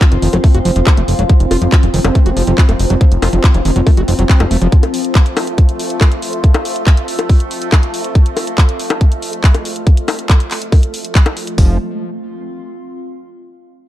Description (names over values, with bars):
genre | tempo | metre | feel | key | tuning
psychedelic trance | 140 BPM | 4/4 | straight | unclear | A4 = 440 Hz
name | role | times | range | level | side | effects
bubbling stepped-filter texture | sustained chords | 0.0-11.6 s | F3 to C4 | -21 LUFS | equal | chorus, built-in reverb, sidechain pumping
screaming distorted acid line | riff | 0.0-4.7, 11.6-11.8 s | Eb3 to Gb4 | -21 LUFS | equal | distortion, chorus, auto-pan, sidechain pumping, ping-pong delay
garage drum kit | drums | 0.0-11.7 s | hi-hat, kick drum | -9 LUFS | equal | none
garage drum kit | drums | 0.0-11.6 s | bongos, handclaps, hi-hat | -20 LUFS | left 2 dB | none
warbly tape-like pad | texture | 0.0-13.3 s | C4 to F6 | -26 LUFS | left 2 dB | chorus, built-in reverb, phaser, sidechain pumping
fat analog bass | bass | 0.1-4.7, 11.6-11.8 s | F1 | -14 LUFS | equal | none
room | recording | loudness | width
digital ambience | dark, warm production | -10 LUFS | side -14 dB against mid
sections
0.0-11.6 A section; 11.6-13.3 B section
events
fade-out on ambient pad 0.0-11.6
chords
0.0 F5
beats
0.01 0.44 0.87 | 1.29 1.72 2.15 2.58 | 3.01 3.44 3.87 4.29 | 4.72 5.15 5.58 6.01 | 6.44 6.87 7.29 7.72 | 8.15 8.58 9.01 9.44 | 9.87 10.29 10.72 11.15 | 11.58 12.01 12.44 12.87